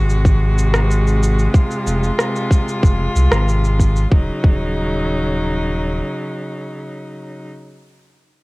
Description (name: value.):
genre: folktronica.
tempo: 93 BPM.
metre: 4/4.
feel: straight.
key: Eb dorian.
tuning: A4 = 440 Hz.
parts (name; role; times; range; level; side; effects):
rich string quartet; sustained chords; 0.0-7.5 s; C3 to Gb4; -21 LUFS; equal; cassette tape.
warm sub bass; bass; 0.0-6.0 s; Eb1 to C2; -17 LUFS; equal; none.
electronic shaker and rim click; drums; 0.1-4.1 s; none; -23 LUFS; equal; cassette tape.
electronic kick drum; drums; 0.3-4.6 s; none; -13 LUFS; equal; cassette tape.
room: little or no reverb.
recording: home recording on cassette.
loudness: -14 LUFS.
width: side -23 dB against mid.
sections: 0.0-4.1 A section; 4.1-6.7 B section.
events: none.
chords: 0.0 Ab7; 1.5 Fm; 4.1 Ebm7.